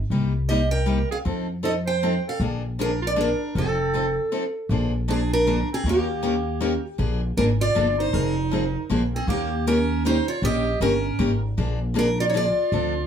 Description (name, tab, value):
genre	acoustic string swing (jazz manouche)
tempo	157 BPM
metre	3/4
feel	swing 61% on 8ths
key	Bb mixolydian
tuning	A4 = 445 Hz
part	upright bass	bass	0.0-13.1 s	F1 to F2	-25 LUFS	equal	none
part	picked steel-string acoustic guitar	accompaniment	0.1-12.9 s	C3 to Bb4	-26 LUFS	left 2 dB	none
part	picked steel-string acoustic guitar	melody	0.5-13.1 s	G4 to G5	-25 LUFS	equal	none
part	bright clarinet	second line	0.5-13.1 s	Bb3 to C5	-28 LUFS	right 5 dB	none
room	wet studio ambience, RT60 0.5 s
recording	heard from further back in the room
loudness	-21 LUFS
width	side -8 dB against mid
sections	0.0-4.7 A section; 4.7-13.1 A section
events	break 4.3-4.7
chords	0.1 Cm7; 1.3 F7; 2.4 Bb7; 3.6 F7; 4.7 Bb7; 5.9 Eb7; 7.0 Bb7; 8.1 Fm7; 8.9 Bb7; 9.3 Eb7; 11.6 Bb7